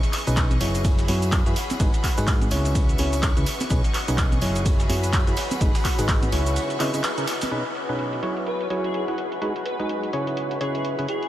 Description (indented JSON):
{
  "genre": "piano house",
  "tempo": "126 BPM",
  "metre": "4/4",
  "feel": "swing 59% on 16ths",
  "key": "B major",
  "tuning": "A4 = 440 Hz",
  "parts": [
    { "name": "rich studio violin section", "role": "sustained chords", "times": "0.0-11.3 s", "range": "G#4 to C#6", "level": "-35 LUFS", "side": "left 1 dB", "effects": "sidechain pumping, low-pass filter" },
    { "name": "breakbeat sampler-style drum kit", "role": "drums", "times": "0.0-7.5 s", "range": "hi-hat, ride cymbal, snare drum", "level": "-39 LUFS", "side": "right 2 dB", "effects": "none" },
    { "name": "punchy analog drum machine", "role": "drums", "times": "0.0-11.3 s", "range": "crash cymbal, handclaps, hi-hat, shaker", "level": "-30 LUFS", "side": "equal", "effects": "low-pass filter on hats, low-pass filter on perc, low-pass filter on snare, low-pass filter on cymbals, low-pass filter on room" },
    { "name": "granular cloud pad", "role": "texture", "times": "0.1-11.3 s", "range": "C#4 to B4", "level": "-35 LUFS", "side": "left 1 dB", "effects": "built-in reverb, wide subtle chorus, sidechain pumping" },
    { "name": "tambourine and congas", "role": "percussion", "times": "0.1-7.5 s", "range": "none", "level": "-34 LUFS", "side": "right 2 dB", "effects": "none" },
    { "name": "percussive organ stab", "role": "riff", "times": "0.3-11.1 s", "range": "B2 to D#5", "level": "-27 LUFS", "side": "equal", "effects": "chorus, sidechain pumping, tape echo" },
    { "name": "hollow-body short-scale fingered electric bass", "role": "bass", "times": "0.3-6.6 s", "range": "F#1 to G#2", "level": "-25 LUFS", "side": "equal", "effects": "sidechain pumping" },
    { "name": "electronic kick drum", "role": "drums", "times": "0.4-6.2 s", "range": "none", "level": "-22 LUFS", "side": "equal", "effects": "none" },
    { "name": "airy dreamy lead", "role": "melody", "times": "8.5-11.3 s", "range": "G#4 to B4", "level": "-31 LUFS", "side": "left 1 dB", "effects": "chorus, tape echo" }
  ],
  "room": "moderate huge ambient reverb, RT60 8.7 s",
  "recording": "dreamy mix soaked in reverb",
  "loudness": "-20 LUFS",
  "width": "side -13 dB against mid",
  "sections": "0.0-7.5 A section; 7.5-11.3 B section",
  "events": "break 6.6-7.5; band accent 7.0; filter sweep on drum 7.5-11.3",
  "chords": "0.0 B69; 0.8 F#9sus4; 1.6 G#m7; 2.5 C#m7; 3.7 B69; 4.7 F#9sus4; 5.4 G#m7; 6.3 C#m7; 7.5 B69; 8.5 F#9sus4; 9.2 G#m7; 10.1 C#m7"
}